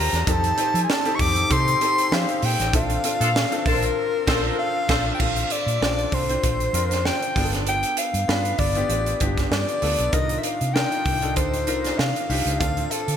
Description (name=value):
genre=polished 1980s jazz-funk pop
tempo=97 BPM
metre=4/4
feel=swing 54% on 16ths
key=Bb major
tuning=A4 = 440 Hz
part: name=breathy soprano saxophone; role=melody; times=0.0-13.2 s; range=A4 to D6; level=-24 LUFS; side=left 1 dB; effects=none
part: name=clear concert grand piano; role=accompaniment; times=0.0-13.2 s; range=B3 to C5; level=-28 LUFS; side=left 3 dB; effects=analog chorus
part: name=vintage muted fingered electric bass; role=bass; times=0.0-13.2 s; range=G1 to F3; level=-26 LUFS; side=right 1 dB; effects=none
part: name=crisp fusion drum kit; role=drums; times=0.1-13.2 s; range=crash cymbal, hi-hat, kick drum, snare drum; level=-25 LUFS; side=right 1 dB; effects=none
part: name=clear horn section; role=second line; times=3.2-5.1 s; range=D4 to A5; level=-28 LUFS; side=equal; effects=ping-pong delay
room=moderate lush hall reverb, RT60 1.8 s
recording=bright 1980s-style digital production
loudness=-19 LUFS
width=side -8 dB against mid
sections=0.0-5.2 A section; 5.2-13.2 B section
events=band accent 2.7-5.2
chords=0.3 F7; 2.7 Bbmaj9; 7.4 G7; 10.1 Cm11; 12.6 Dm7